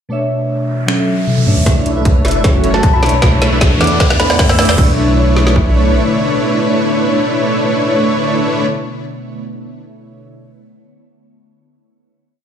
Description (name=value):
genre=future bass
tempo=154 BPM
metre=4/4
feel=half-time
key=B minor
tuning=A4 = 441 Hz
part: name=glassy digital keys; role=accompaniment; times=0.1-10.4 s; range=B2 to E5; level=-20 LUFS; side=right 1 dB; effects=chorus, sidechain pumping, ping-pong delay
part: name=ethereal airy pad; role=sustained chords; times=0.7-8.7 s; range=D3 to C#5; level=-24 LUFS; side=right 1 dB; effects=ensemble chorus, built-in reverb, phaser, sidechain pumping
part: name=riser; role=sound effects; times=0.6-4.8 s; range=none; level=-24 LUFS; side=equal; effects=none
part: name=trap drum kit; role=drums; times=0.9-4.9 s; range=crash cymbal, finger snaps, hi-hat, snare drum, toms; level=-16 LUFS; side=left 1 dB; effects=high-pass filter on snare, high-pass filter on toms, high-pass filter on hats, high-pass filter on cymbals
part: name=airy dreamy lead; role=arpeggios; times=1.7-8.7 s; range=C#5 to F#5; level=-23 LUFS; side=left 2 dB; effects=chorus, sidechain pumping, ping-pong delay
part: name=dense compressed supersaw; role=riff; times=1.7-8.7 s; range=A3 to F#5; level=-16 LUFS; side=equal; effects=cassette tape, sidechain pumping, low-pass filter, ping-pong delay
part: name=saturated sub bass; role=bass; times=1.7-5.9 s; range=F#1 to F#2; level=-16 LUFS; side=equal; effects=sidechain pumping
part: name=trap drum kit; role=drums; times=1.7-5.7 s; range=kick drum, snare drum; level=-13 LUFS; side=equal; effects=none
part: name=thumb-piano-like synth pluck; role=melody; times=2.7-4.8 s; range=A5 to E6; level=-20 LUFS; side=left 1 dB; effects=chorus, sidechain pumping, ping-pong delay
room=light reverb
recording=played on a big sound system in a bare room, large studio reverb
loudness=-11 LUFS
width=side -8 dB against mid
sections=0.1-1.7 intro; 1.7-4.8 build; 4.8-7.9 final chord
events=riser 0.6-1.7, 1.7-4.8; drum fill 1.3-1.7, 1.7-4.8; build-up 1.7-4.8; filter sweep on supersaw synth 1.7-4.8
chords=0.1 Bm11; 0.9 F#m7; 1.5 Bm11; 2.4 F#m7; 3.0 Bm11; 3.8 E7sus4; 4.8 Bm11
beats=| 0.11 0.49 0.89 1.27 | 1.66 2.05 2.44 2.83 | 3.22 3.61 4.00 4.39 | 4.78 5.17 5.56 5.95 | 6.34 6.73 7.12 7.51